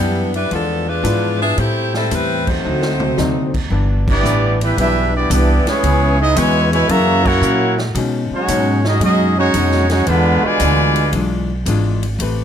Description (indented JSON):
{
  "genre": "jazz, big band swing",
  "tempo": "113 BPM",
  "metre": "4/4",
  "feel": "swing 68% on 8ths",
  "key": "unclear",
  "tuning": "A4 = 440 Hz",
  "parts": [
    { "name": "clear saxophone section", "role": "melody", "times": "0.0-3.5 s", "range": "E3 to E5", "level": "-20 LUFS", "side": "left 1 dB", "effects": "none" },
    { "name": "archtop guitar, miked and amplified", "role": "accompaniment", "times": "0.0-12.4 s", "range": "G2 to B4", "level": "-23 LUFS", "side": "left 6 dB", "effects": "none" },
    { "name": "clear upright piano", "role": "accompaniment", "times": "0.0-3.5 s", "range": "F3 to B4", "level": "-25 LUFS", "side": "left 2 dB", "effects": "none" },
    { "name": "upright bass", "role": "bass", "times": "0.0-12.4 s", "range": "G1 to B2", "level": "-18 LUFS", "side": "equal", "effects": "none" },
    { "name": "swinging big-band drum kit", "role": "drums", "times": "0.3-12.4 s", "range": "crash cymbal, hi-hat, kick drum, ride cymbal, snare drum, toms", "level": "-26 LUFS", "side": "right 1 dB", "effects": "none" },
    { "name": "dark trombone section", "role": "second line", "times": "2.5-11.1 s", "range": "B2 to F#4", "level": "-19 LUFS", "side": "right 2 dB", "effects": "none" },
    { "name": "clear trumpet section", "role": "melody", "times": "4.1-11.1 s", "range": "G#3 to A#5", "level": "-18 LUFS", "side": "equal", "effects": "none" }
  ],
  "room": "light reverb",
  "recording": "close, detailed microphones",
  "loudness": "-14 LUFS",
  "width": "side -9 dB against mid",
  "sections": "0.0-3.7 A section; 3.7-12.4 B section",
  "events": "band accent 2.4, 4.0, 7.2; drum fill 2.6-3.2",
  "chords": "0.0 G6; 0.5 E7b9; 1.6 Am7; 2.6 D7b9; 3.7 G6; 5.8 C#m7; 6.9 F#7; 8.0 B69; 10.1 E7b9"
}